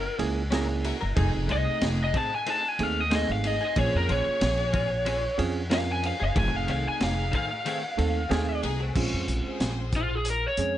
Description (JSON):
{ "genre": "straight-eighth soul blues", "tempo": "92 BPM", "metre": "4/4", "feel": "swing 55% on 16ths", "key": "Bb minor", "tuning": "A4 = 440 Hz", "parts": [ { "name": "lead guitar through a small cranked amp", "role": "melody", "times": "0.0-10.8 s", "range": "F4 to A5", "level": "-28 LUFS", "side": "left 1 dB", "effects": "overdrive, plate reverb" }, { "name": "direct-recorded clean electric guitar", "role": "stabs", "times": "0.0-9.0 s", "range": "Eb3 to Bb4", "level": "-35 LUFS", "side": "left 4 dB", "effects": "ensemble chorus, plate reverb" }, { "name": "upright bass", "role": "bass", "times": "0.0-10.8 s", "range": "F1 to F2", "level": "-29 LUFS", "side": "equal", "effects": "none" }, { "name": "barky reed electric piano", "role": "accompaniment", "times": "0.2-10.8 s", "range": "Ab3 to Bb4", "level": "-32 LUFS", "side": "right 6 dB", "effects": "overdrive, plate reverb" }, { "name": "crunchy breakbeat drum kit", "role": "drums", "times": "0.2-10.7 s", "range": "crash cymbal, hi-hat, kick drum, ride cymbal, snare drum", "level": "-31 LUFS", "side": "equal", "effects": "none" }, { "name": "warm studio string section", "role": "sustained chords", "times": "0.8-10.1 s", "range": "A3 to C5", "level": "-37 LUFS", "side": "left 2 dB", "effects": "plate reverb" } ], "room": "light reverb", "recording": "nothing above 10.4 kHz", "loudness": "-24 LUFS", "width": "side -12 dB against mid", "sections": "0.0-9.0 A section; 9.0-10.8 B section", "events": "lead electric guitar solo 0.0-9.0", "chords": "0.0 Gb7; 1.2 F7#9; 3.8 Bbm9; 6.4 F7#9; 9.0 Bbm9" }